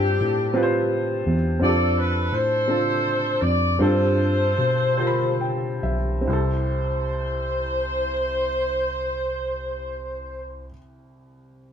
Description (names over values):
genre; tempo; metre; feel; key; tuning
slow gospel; 44-57 BPM (dotted quarters); 6/8; straight; C major; A4 = 440 Hz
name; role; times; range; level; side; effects
warm saxophone section; melody; 0.0-10.7 s; C4 to D5; -24 LUFS; left 1 dB; none
warm upright piano; accompaniment; 0.0-11.7 s; C2 to B5; -26 LUFS; right 1 dB; none
tine electric piano; bass; 0.0-10.7 s; B1 to B2; -25 LUFS; equal; none
room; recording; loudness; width
moderate studio reverb, RT60 0.9 s; band playing live in one room; -20 LUFS; side -8 dB against mid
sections
0.0-1.6 A section; 1.6-6.3 B section; 6.3-11.7 C section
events
slowing down 1.6-6.3; upright piano fill 5.0-6.3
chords
0.0 G9sus4; 1.6 Dm7/F; 3.8 G9sus4; 6.3 C6